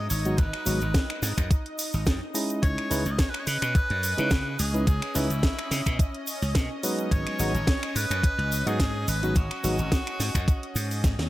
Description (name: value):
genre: nu-disco, nu disco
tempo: 107 BPM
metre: 4/4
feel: swing 54% on 16ths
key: unclear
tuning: A4 = 440 Hz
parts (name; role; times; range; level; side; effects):
- edgy tenor saxophone; melody; 0.0-11.0 s; E4 to D#5; -32 LUFS; equal; dub echo
- lush unison pad; sustained chords; 0.0-11.3 s; C#4 to D#5; -36 LUFS; equal; chorus, sidechain pumping
- slap bass; bass; 0.0-11.3 s; G#1 to C#3; -28 LUFS; equal; none
- house drum kit; drums; 0.1-11.3 s; finger snaps, hi-hat, snare drum; -32 LUFS; equal; overdrive
- egg shaker; percussion; 0.1-11.2 s; none; -37 LUFS; right 1 dB; none
- tine electric piano; accompaniment; 0.3-9.8 s; F#3 to D#5; -31 LUFS; equal; sidechain pumping
- electronic kick drum; drums; 0.4-11.2 s; none; -23 LUFS; equal; overdrive
room: little or no reverb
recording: none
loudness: -23 LUFS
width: side -16 dB against mid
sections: 0.0-11.3 A section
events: drum fill 11.0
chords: 0.0 G#m7; 2.6 C#m7; 6.8 G#m7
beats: | 0.39 0.94 1.51 2.07 | 2.63 3.19 3.75 4.31 | 4.87 5.43 5.99 6.55 | 7.11 7.67 8.23 8.80 | 9.36 9.92 10.48 11.04